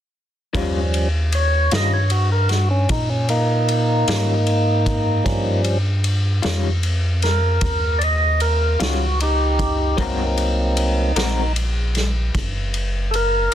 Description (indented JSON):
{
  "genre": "slow blues",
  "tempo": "51 BPM (dotted quarters)",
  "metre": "12/8",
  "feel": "straight",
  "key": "Eb mixolydian",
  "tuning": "A4 = 440 Hz",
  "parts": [
    { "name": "electric guitar through a small old amp", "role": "accompaniment", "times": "0.5-11.4 s", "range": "Eb3 to Bb4", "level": "-25 LUFS", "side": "left 5 dB", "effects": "tremolo" },
    { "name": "rubbery square bass", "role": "bass", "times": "0.5-13.5 s", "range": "Gb1 to Bb2", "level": "-20 LUFS", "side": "equal", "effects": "none" },
    { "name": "vintage drum kit", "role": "drums", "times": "0.5-13.5 s", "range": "kick drum, ride cymbal, snare drum", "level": "-25 LUFS", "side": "left 1 dB", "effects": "none" },
    { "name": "tonewheel organ", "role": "sustained chords", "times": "0.6-13.5 s", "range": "F3 to Eb5", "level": "-21 LUFS", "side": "equal", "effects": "slow rotary speaker" }
  ],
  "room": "little or no reverb",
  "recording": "dense, heavily limited modern master",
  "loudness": "-17 LUFS",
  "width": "side -11 dB against mid",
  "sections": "0.6-13.5 A section",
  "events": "tonewheel organ solo 0.6-13.5",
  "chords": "0.6 Eb9; 10.0 Ab9",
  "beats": "| 0.56 1.74 2.91 4.09 | 5.27 6.45 7.63 8.81 | 9.99 11.17 12.35 13.53"
}